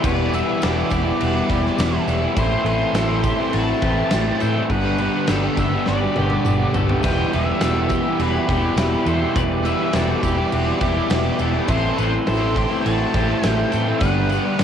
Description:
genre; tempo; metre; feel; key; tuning
rock, shoegaze and dream pop; 103 BPM; 4/4; straight; E minor; A4 = 440 Hz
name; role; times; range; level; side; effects
octave-fuzz lead guitar; melody; 0.0-14.5 s; B4 to A5; -28 LUFS; right 1 dB; distortion, cassette tape, tape echo
phased analog pad; sustained chords; 0.0-14.6 s; G4 to D6; -34 LUFS; equal; none
electric guitar at the edge of break-up; arpeggios; 0.0-14.6 s; F#4 to C5; -30 LUFS; left 10 dB; wide subtle chorus, cassette tape, tape echo
crunchy overdriven guitar; riff; 0.0-14.6 s; E2 to A4; -24 LUFS; right 9 dB; reverse reverb, cassette tape
overdriven electric guitar; riff; 0.0-14.6 s; E2 to A3; -30 LUFS; equal; none
raw garage guitar; riff; 0.0-14.6 s; E2 to A4; -24 LUFS; left 9 dB; overdrive, lush chorus, cassette tape
vintage muted fingered electric bass; bass; 0.0-14.6 s; E1 to A2; -23 LUFS; equal; tube saturation
huge arena drum kit; drums; 0.0-14.6 s; crash cymbal, kick drum, snare drum, splash cymbal, toms; -25 LUFS; equal; none
tambourine; percussion; 0.0-14.6 s; none; -42 LUFS; left 14 dB; none
room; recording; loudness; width
light reverb, small room ambience; home recording on cassette; -17 LUFS; side -8 dB against mid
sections
0.0-14.6 A section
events
drum fill 5.9-7.0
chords
0.0 Em7; 2.4 Am7; 4.7 Gmaj7; 7.0 Em7; 11.7 Am7; 14.0 Gmaj7

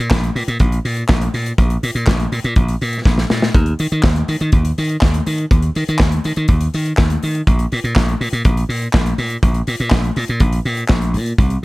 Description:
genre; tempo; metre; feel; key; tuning
disco; 122 BPM; 4/4; straight; unclear; A4 = 440 Hz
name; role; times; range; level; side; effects
slap bass; bass; 0.0-11.6 s; Bb1 to Eb3; -17 LUFS; equal; none
modern studio drum kit; drums; 0.0-11.6 s; handclaps, hi-hat, kick drum, snare drum; -17 LUFS; equal; none
room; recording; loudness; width
little or no reverb; none; -14 LUFS; side -21 dB against mid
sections
0.0-11.4 A section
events
drum fill 3.1-3.5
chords
none

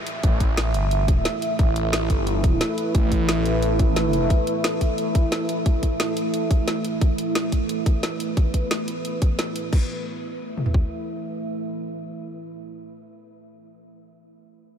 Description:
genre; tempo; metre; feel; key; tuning
dark technical drum and bass; 177 BPM; 4/4; straight; unclear; A4 = 441 Hz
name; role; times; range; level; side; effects
deep dark ambient pad; sustained chords; 0.0-13.2 s; A3 to E5; -26 LUFS; right 1 dB; chorus, built-in reverb, sidechain pumping
downlifter; sound effects; 0.0-1.6 s; none; -40 LUFS; equal; none
drum and bass drum kit; drums; 0.1-9.8 s; crash cymbal, hi-hat, snare drum; -29 LUFS; equal; none
phased detuned saw bass; bass; 0.2-4.3 s; G1 to A1; -23 LUFS; equal; phaser, tube saturation, sidechain pumping
drum and bass drum kit; drums; 0.2-10.8 s; kick drum, toms; -20 LUFS; equal; none
room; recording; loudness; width
light reverb, digital ambience; none; -20 LUFS; side -8 dB against mid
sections
0.0-9.7 A section; 9.7-12.4 B section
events
none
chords
0.0 A5

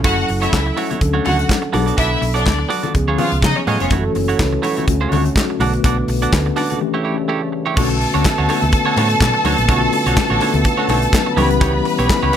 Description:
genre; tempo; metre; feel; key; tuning
disco; 124 BPM; 4/4; swing 56% on 16ths; B minor; A4 = 437 Hz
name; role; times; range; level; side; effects
bright symphonic string section; second line; 0.0-3.9, 7.8-12.4 s; C#4 to B5; -20 LUFS; equal; none
mellow tine electric piano; accompaniment; 0.0-12.4 s; D3 to B4; -22 LUFS; left 4 dB; medium stereo tremolo
semi-hollow electric guitar; accompaniment; 0.0-12.4 s; A3 to D5; -23 LUFS; right 7 dB; wide subtle chorus
hollow-body short-scale fingered electric bass; bass; 0.0-12.3 s; E#1 to C#3; -20 LUFS; equal; none
modern studio drum kit; drums; 0.0-12.4 s; crash cymbal, handclaps, hi-hat, kick drum, snare drum; -20 LUFS; equal; none
congas; percussion; 0.1-12.4 s; none; -26 LUFS; left 6 dB; none
mellow French horn section; sustained chords; 3.9-12.4 s; C#3 to A4; -24 LUFS; equal; none
room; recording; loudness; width
light reverb; none; -14 LUFS; side -9 dB against mid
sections
0.0-7.8 A section; 7.8-12.4 B section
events
break 6.8-7.8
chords
0.0 F#m7; 1.0 Dmaj7; 1.7 Bm7; 2.9 C#7; 3.9 F#m7; 4.9 Dmaj7; 5.6 Bm7; 6.8 A7; 7.8 Bm9; 11.4 C#m7b5

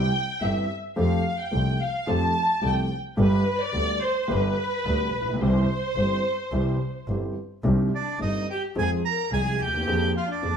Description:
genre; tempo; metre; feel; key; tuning
tango; 108 BPM; 4/4; rubato; C major; A4 = 439 Hz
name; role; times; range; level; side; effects
warm studio violin section; second line; 0.0-10.6 s; D4 to A5; -27 LUFS; equal; none
dark baby grand piano; accompaniment; 0.0-10.6 s; G1 to Ab4; -26 LUFS; equal; none
clear double bass; bass; 0.0-10.6 s; G1 to F2; -28 LUFS; equal; none
bandoneon; melody; 8.0-10.6 s; D5 to Bb5; -28 LUFS; right 5 dB; none
room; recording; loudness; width
wet studio reverb, RT60 0.8 s; band playing live in one room; -22 LUFS; side -7 dB against mid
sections
0.0-7.6 A section; 7.6-10.6 B section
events
violin section solo 0.0-7.6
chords
0.0 C; 1.0 Fadd9; 3.2 G; 5.4 C; 7.6 Cmadd9; 8.8 Fm; 9.9 Bb7/F

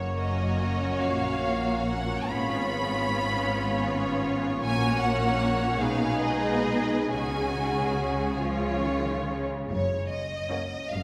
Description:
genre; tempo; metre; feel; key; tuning
classical, slow romantic movement for string orchestra; 43-52 BPM (dotted quarters); 6/8; rubato; F# major; A4 = 439 Hz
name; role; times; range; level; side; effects
rich symphonic violin section; melody; 0.0-11.0 s; C#5 to B5; -34 LUFS; equal; none
clear symphonic violin section; second line; 0.0-10.8 s; E#4 to C#5; -34 LUFS; equal; none
rich symphonic viola section; accompaniment; 0.0-10.8 s; G#3 to D#4; -33 LUFS; equal; none
rich studio cello section; bass; 0.0-11.0 s; F#2 to E#3; -34 LUFS; equal; none
rich symphonic double bass section; bass; 0.0-11.0 s; F#1 to C#2; -35 LUFS; equal; none
room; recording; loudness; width
wet church reverb, RT60 3.6 s; recorded in a church or concert hall; -27 LUFS; mono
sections
0.0-11.0 A section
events
none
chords
0.0 F#; 2.3 C#7/G#; 4.6 F#/A#; 5.8 G#m/B; 7.2 C#sus4; 8.4 C#; 9.7 F#

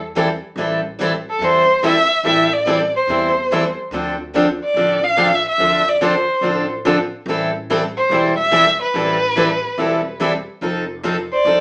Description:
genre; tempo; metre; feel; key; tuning
acoustic string swing (jazz manouche); 143 BPM; 4/4; swing 63% on 8ths; A minor; A4 = 441 Hz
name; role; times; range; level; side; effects
upright bass; bass; 0.0-11.6 s; E1 to E2; -34 LUFS; equal; none
picked steel-string acoustic guitar; accompaniment; 0.2-11.6 s; D3 to A4; -19 LUFS; equal; none
picked steel-string acoustic guitar; accompaniment; 0.2-11.6 s; D3 to A4; -25 LUFS; equal; none
warm violin; melody; 1.3-11.6 s; A4 to F5; -15 LUFS; equal; none
room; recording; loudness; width
wet studio reverb, RT60 0.6 s; band playing live in one room, small speaker sound; -14 LUFS; side -32 dB against mid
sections
0.0-11.6 A section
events
none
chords
0.0 Am7; 3.9 Dm7; 7.3 Am9; 10.6 F7

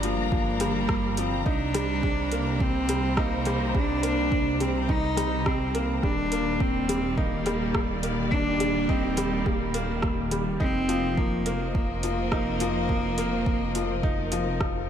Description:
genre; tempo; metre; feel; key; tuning
piano and strings electronica; 105 BPM; 4/4; straight; unclear; A4 = 439 Hz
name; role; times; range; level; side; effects
warm cello; melody; 0.0-14.6 s; Bb3 to Eb4; -28 LUFS; equal; tape echo
warm symphonic string section; sustained chords; 0.0-14.9 s; C3 to Bb5; -34 LUFS; left 2 dB; sidechain pumping
felt-muted upright piano; riff; 0.0-14.9 s; F3 to Eb4; -30 LUFS; left 1 dB; tape echo
dark detuned saw bass; bass; 0.0-14.9 s; Eb1 to C2; -31 LUFS; right 1 dB; sidechain pumping
deep house drum kit; drums; 0.0-14.7 s; hi-hat, rim click; -34 LUFS; right 1 dB; none
electronic kick drum; drums; 0.3-14.7 s; none; -28 LUFS; right 1 dB; overdrive
room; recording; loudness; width
moderate plate reverb, RT60 2.8 s; dreamy mix soaked in reverb; -23 LUFS; side -9 dB against mid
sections
0.0-14.9 A section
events
none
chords
0.0 Gm7; 1.5 Cm7; 6.0 Ebmaj7; 10.6 F7sus4

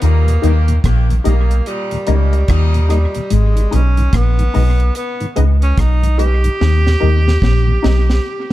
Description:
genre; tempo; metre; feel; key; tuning
roots reggae; 73 BPM; 4/4; swing 62% on 16ths; G# harmonic minor; A4 = 440 Hz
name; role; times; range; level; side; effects
breathy tenor saxophone; melody; 0.0-8.5 s; G3 to G4; -22 LUFS; right 1 dB; tape echo
warm horn section; second line; 0.0-3.1 s; A#2 to G4; -28 LUFS; equal; tape echo
electric guitar with an envelope filter; riff; 0.0-8.1 s; G#2 to D#3; -21 LUFS; left 4 dB; spring reverb
soft dub sub bass; bass; 0.0-8.2 s; G#1 to D#2; -12 LUFS; equal; none
deep reggae drum kit; drums; 0.0-8.5 s; hi-hat, kick drum, rim click, snare drum; -20 LUFS; equal; dub echo
mellow tonewheel organ; accompaniment; 0.3-8.5 s; D#2 to D#4; -25 LUFS; left 2 dB; overdrive, chorus vibrato, slow rotary speaker
filtered dub chord stab; stabs; 0.4-8.1 s; D#4 to D#5; -24 LUFS; left 4 dB; phaser
room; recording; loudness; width
little or no reverb; none; -12 LUFS; side -15 dB against mid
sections
0.0-8.5 A section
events
drum fill 6.6-8.5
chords
0.0 D#; 3.3 G#m; 6.6 D#

